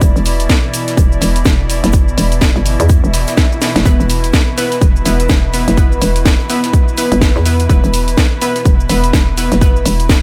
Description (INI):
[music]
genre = bass house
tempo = 125 BPM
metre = 4/4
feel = swing 59% on 16ths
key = unclear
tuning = A4 = 438 Hz
[part]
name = warm studio string section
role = sustained chords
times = 0.0-10.2 s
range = B2 to D5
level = -23 LUFS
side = equal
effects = vintage 12-bit sampler grit, sidechain pumping, low-pass filter
[part]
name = hollow knocking FM bass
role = bass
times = 0.0-10.2 s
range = E1 to E2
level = -17 LUFS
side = equal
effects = sidechain pumping
[part]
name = electronic kick drum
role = drums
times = 0.0-10.2 s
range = none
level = -14 LUFS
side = equal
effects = small room reverb
[part]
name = house drum kit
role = drums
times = 0.0-10.2 s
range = hi-hat, shaker, snare drum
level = -21 LUFS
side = equal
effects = small room reverb
[part]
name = soft brush drum kit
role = drums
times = 0.0-10.2 s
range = hi-hat, shaker, snare drum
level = -32 LUFS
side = equal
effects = none
[part]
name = swell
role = sound effects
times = 3.1-3.9 s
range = none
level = -29 LUFS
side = equal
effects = none
[part]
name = orchestra-hit-like synth stab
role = stabs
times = 3.9-10.2 s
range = B3 to B4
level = -22 LUFS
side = equal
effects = built-in reverb, sidechain pumping, dub echo
[sound]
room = small room ambience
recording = none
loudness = -13 LUFS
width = mono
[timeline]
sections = 0.0-10.2 A section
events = swell 3.1-3.9; drum fill 3.6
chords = 0.0 E5